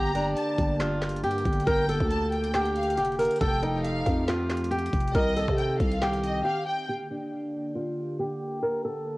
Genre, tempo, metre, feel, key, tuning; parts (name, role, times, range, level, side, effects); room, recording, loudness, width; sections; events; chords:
hip hop, trap; 138 BPM; 4/4; half-time; G minor; A4 = 440 Hz
fingerpicked swing-style acoustic guitar; melody; 0.0-9.2 s; D4 to Bb4; -28 LUFS; equal; low-pass filter, cassette tape
warm studio violin section; second line; 0.0-6.9 s; Eb5 to Bb5; -34 LUFS; equal; cassette tape, analog delay
warm analog pad; sustained chords; 0.0-9.2 s; D3 to G4; -37 LUFS; equal; chorus, low-pass filter, cassette tape
growling 808-style bass; bass; 0.0-6.4 s; F1 to C3; -29 LUFS; equal
trap drum kit; drums; 0.1-6.3 s; handclaps, hi-hat, kick drum, snare drum; -30 LUFS; equal; cassette tape
light reverb, digital ambience; home recording on cassette; -24 LUFS; side -20 dB against mid
0.0-6.9 A section; 6.9-9.2 B section
silent gap 6.5-6.9
0.0 Gm; 3.4 Fadd9; 5.1 Cm; 6.9 Gm